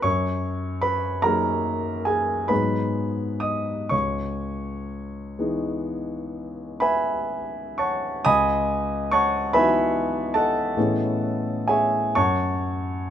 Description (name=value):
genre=classical, impressionist solo piano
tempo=40-51 BPM (dotted quarters)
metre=9/8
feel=rubato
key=C# minor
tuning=A4 = 440 Hz
part: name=warm concert grand piano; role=solo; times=0.0-13.1 s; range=C#2 to D#6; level=-22 LUFS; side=equal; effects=none
room=light reverb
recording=close, detailed microphones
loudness=-21 LUFS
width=side -9 dB against mid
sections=0.0-8.2 A section; 8.2-13.1 B section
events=none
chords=0.0 F#69; 2.5 G#m7; 3.9 C#m11; 10.8 Amaj9; 12.2 F#m